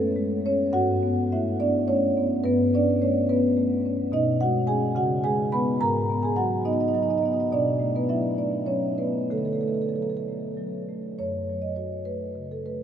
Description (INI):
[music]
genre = classical, contemporary piece for solo marimba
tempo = 63-73 BPM (dotted quarters)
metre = 6/8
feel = rubato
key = A major, F# dorian from 4.1 s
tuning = A4 = 440 Hz
[part]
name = marimba with soft mallets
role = solo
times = 0.0-12.8 s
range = F#2 to B5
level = -22 LUFS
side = equal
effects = none
[sound]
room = wet huge ambient reverb, RT60 7.7 s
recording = in a vast, echoing space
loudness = -22 LUFS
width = side -9 dB against mid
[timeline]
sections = 0.0-11.2 A section; 11.2-12.8 B section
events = none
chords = 0.0 F#madd9; 0.7 G69; 2.5 Aadd9/G; 4.1 B69; 5.0 C#5; 5.8 G#m9; 7.5 Bm7; 9.3 D; 11.2 F#m